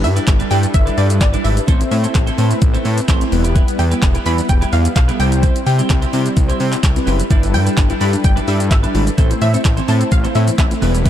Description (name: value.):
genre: dance-pop.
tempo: 128 BPM.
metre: 4/4.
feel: straight.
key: A minor.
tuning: A4 = 441 Hz.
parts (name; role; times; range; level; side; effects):
wide unison pluck; melody; 0.0-10.8 s; D5 to B5; -24 LUFS; equal; wide subtle chorus, ping-pong delay.
mellow synth brass; accompaniment; 0.0-11.1 s; G3 to C5; -22 LUFS; left 2 dB; chorus, sidechain pumping.
soft supersaw; sustained chords; 0.0-11.1 s; G3 to B4; -27 LUFS; equal; sidechain pumping.
twelve-string electric guitar; riff; 0.0-11.1 s; G3 to C5; -25 LUFS; right 6 dB; wide subtle chorus.
fat analog bass; bass; 0.0-11.1 s; E1 to C3; -16 LUFS; equal; sidechain pumping.
pop drum kit; drums; 0.0-11.1 s; handclaps, hi-hat, kick drum, shaker; -16 LUFS; equal; overdrive.
mallet-like synth pluck; arpeggios; 7.3-11.1 s; E3 to E4; -28 LUFS; left 5 dB; none.
room: digital ambience.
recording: dark, warm production.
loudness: -12 LUFS.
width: side -11 dB against mid.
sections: 0.0-11.1 A section.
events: none.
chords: 0.0 G6; 1.7 Am; 3.3 Em; 5.2 C; 7.3 G6; 9.2 Am.